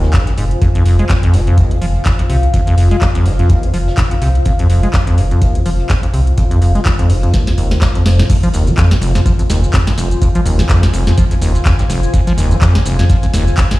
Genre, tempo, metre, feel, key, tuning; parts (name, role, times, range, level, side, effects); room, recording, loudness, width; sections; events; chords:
acid house; 125 BPM; 4/4; swing 56% on 16ths; F minor; A4 = 439 Hz
acid bass, square; riff; 0.0-13.8 s; F1 to Ab3; -14 LUFS; equal; sidechain pumping, ping-pong delay
warm sub bass; bass; 0.0-13.5 s; F1 to C2; -16 LUFS; equal; sidechain pumping
jazz brush drum kit; drums; 0.0-13.7 s; hi-hat, snare drum; -33 LUFS; right 2 dB; sidechain pumping on hats, high-pass filter on hats, high-pass filter on snare, high-pass filter on room
deep dark ambient pad; texture; 0.0-13.8 s; F4 to Ab5; -24 LUFS; left 2 dB; chorus, built-in reverb, sidechain pumping
booming analog drum machine; drums; 0.1-13.8 s; crash cymbal, handclaps, hi-hat, shaker, snare drum; -22 LUFS; equal
electronic kick drum; drums; 0.1-13.7 s; -13 LUFS; equal
little or no reverb; played on a big sound system in a bare room, large studio reverb; -10 LUFS; side -18 dB against mid
0.0-8.3 A section; 8.3-13.8 B section
drum fill 7.3-8.3; drop 8.3-13.8
0.0 Fm7